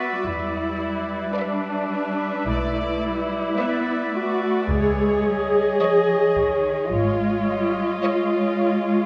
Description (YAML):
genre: cinematic, suspense film score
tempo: 54 BPM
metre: 4/4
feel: straight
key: unclear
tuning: A4 = 440 Hz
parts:
  - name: warm chamber viola section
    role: accompaniment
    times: 0.0-9.1 s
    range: D4 to G#4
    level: -25 LUFS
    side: equal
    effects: none
  - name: bubbling stepped-filter texture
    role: sustained chords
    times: 0.0-9.1 s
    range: B4 to E5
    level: -29 LUFS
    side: equal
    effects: chorus, built-in reverb
  - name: warm chamber cello section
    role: bass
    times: 0.0-9.1 s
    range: D#3 to B3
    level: -29 LUFS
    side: equal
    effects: none
  - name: rich chamber double bass section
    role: bass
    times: 0.3-7.8 s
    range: G#1 to E2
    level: -33 LUFS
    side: equal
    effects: none
  - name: rich chamber violin section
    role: melody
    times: 1.4-8.9 s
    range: D#5 to E5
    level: -37 LUFS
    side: equal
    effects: none
  - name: warm chamber violin section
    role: second line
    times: 1.4-8.9 s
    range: B4 to D5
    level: -33 LUFS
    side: equal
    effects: none
  - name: taiko ensemble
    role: drums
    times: 4.7-6.9 s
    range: none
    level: -33 LUFS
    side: equal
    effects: none
room: wet concert hall reverb, RT60 2.2 s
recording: none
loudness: -22 LUFS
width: mono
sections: 0.0-9.1 A section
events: none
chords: 0.0 Em7; 4.7 C#sus2